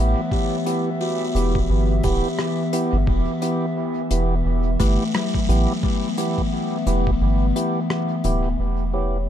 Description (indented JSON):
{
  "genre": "ambient dub",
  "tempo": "87 BPM",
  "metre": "4/4",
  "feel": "swing 58% on 16ths",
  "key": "E minor",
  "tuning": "A4 = 440 Hz",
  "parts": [
    { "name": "warbly tape-like pad", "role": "sustained chords", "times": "0.0-9.3 s", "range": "E3 to E5", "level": "-25 LUFS", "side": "left 1 dB", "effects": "chorus, built-in reverb" },
    { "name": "buzzing kalimba", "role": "arpeggios", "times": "0.0-9.3 s", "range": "F#3 to C#5", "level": "-28 LUFS", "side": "left 4 dB", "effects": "low-pass filter, dub echo" },
    { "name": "tonewheel organ", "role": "stabs", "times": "0.0-9.2 s", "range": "B3 to G4", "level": "-27 LUFS", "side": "right 3 dB", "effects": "slow rotary speaker, low-pass filter, dub echo" },
    { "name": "round analog bass", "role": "bass", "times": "0.0-9.3 s", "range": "D1 to A1", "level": "-20 LUFS", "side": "equal", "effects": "none" },
    { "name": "electronic kick drum", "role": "drums", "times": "0.3-7.2 s", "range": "none", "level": "-24 LUFS", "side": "equal", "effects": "none" },
    { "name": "soft brush drum kit", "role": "drums", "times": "0.7-8.4 s", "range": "hi-hat, rim click", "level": "-31 LUFS", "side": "left 3 dB", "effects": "dub echo" }
  ],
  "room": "studio reverb",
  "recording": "dark, warm production",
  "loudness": "-19 LUFS",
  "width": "side -10 dB against mid",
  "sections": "0.0-8.6 A section",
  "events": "kick drops out 7.2-8.6",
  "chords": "0.0 Em",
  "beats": "| 0.32 1.01 1.70 2.39 | 3.08 3.77 4.46 5.14 | 5.83 6.52 7.21 7.90 | 8.59 9.28"
}